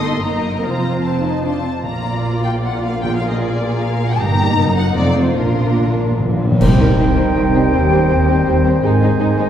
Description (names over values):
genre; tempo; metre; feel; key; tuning
classical, dramatic, fast romantic movement for symphony orchestra; 144-168 BPM; 3/4; rubato; Bb major; A4 = 439 Hz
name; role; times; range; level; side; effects
warm symphonic violin section; melody; 0.0-9.4 s; G4 to C6; -25 LUFS; left 4 dB; none
warm symphonic violin section; second line; 0.0-9.5 s; C4 to Eb5; -24 LUFS; left 2 dB; none
warm symphonic viola section; accompaniment; 0.0-9.4 s; Eb3 to F4; -22 LUFS; right 1 dB; none
warm symphonic cello section; bass; 0.0-9.5 s; C2 to Bb2; -20 LUFS; right 1 dB; none
warm symphonic double bass section; bass; 0.0-9.5 s; F1 to Eb2; -20 LUFS; right 1 dB; none
timpani; percussion; 1.8-7.1 s; Bb2 to C3; -21 LUFS; equal; none
cymbal swell, clash cymbals and concert bass drum; percussion; 4.2-7.3 s; none; -24 LUFS; equal; none
clear clarinet; second line; 6.6-9.5 s; Eb4; -26 LUFS; right 3 dB; none
clear oboe; second line; 6.6-9.5 s; C5; -26 LUFS; right 1 dB; none
mellow silver concert flute; second line; 6.6-9.5 s; G5 to Ab5; -23 LUFS; left 2 dB; none
dark bassoon; accompaniment; 6.6-9.5 s; Eb3; -23 LUFS; right 4 dB; none
dark French horn section; sustained chords; 6.6-9.5 s; G3 to Eb4; -21 LUFS; left 3 dB; none
room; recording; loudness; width
wet scoring stage reverb, RT60 1.7 s; heard from further back in the room; -14 LUFS; side -9 dB against mid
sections
0.0-6.6 A section; 6.6-9.5 B section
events
timpani fill 5.4-6.6; band accent 6.6-7.0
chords
0.2 Ebm/Gb; 0.6 F; 1.8 Bb; 4.2 Eb/G; 4.6 Ebm/Gb; 5.0 F7; 5.4 Bb; 6.6 Cm; 7.7 Cm/Eb; 8.8 Ab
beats
0.23 | 0.64 1.04 1.44 | 1.84 2.25 2.65 | 3.04 3.42 3.81 | 4.19 4.58 4.97 | 5.37 5.79 6.20 | 6.61 6.98 7.35 | 7.72 8.09 8.46 | 8.83 9.19